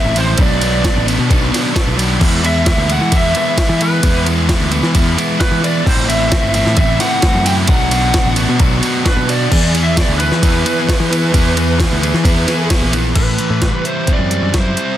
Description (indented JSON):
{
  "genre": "indie rock",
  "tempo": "131 BPM",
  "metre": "4/4",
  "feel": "straight",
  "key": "A dorian",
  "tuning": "A4 = 442 Hz",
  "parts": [
    { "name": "lead guitar through a small cranked amp", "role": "melody", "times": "0.0-15.0 s", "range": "B4 to G5", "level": "-20 LUFS", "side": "right 1 dB", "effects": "overdrive, plate reverb, tape echo" },
    { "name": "overdriven electric guitar", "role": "riff", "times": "0.0-15.0 s", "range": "A2 to G#4", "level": "-17 LUFS", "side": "equal", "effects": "none" },
    { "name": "picked electric bass", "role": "bass", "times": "0.0-14.7 s", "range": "G1 to E3", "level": "-17 LUFS", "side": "equal", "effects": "none" },
    { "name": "jungle sampler-style drum kit", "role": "drums", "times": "0.2-14.9 s", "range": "crash cymbal, hi-hat, kick drum, ride cymbal, snare drum", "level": "-16 LUFS", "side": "equal", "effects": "overdrive" }
  ],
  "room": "light reverb",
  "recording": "dense, heavily limited modern master",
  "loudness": "-12 LUFS",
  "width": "side -12 dB against mid",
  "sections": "0.0-13.2 A section; 13.2-15.0 B section",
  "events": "none",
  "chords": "0.4 Bm; 2.2 E; 5.9 Am; 7.7 Bm; 9.5 E; 13.2 Am7",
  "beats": "| 0.39 0.84 1.30 1.75 | 2.21 2.67 3.12 3.58 | 4.03 4.49 4.95 5.40 | 5.86 6.32 6.77 7.23 | 7.69 8.14 8.60 9.06 | 9.51 9.97 10.43 10.88 | 11.34 11.79 12.25 12.71 | 13.17 13.63 14.09 14.54"
}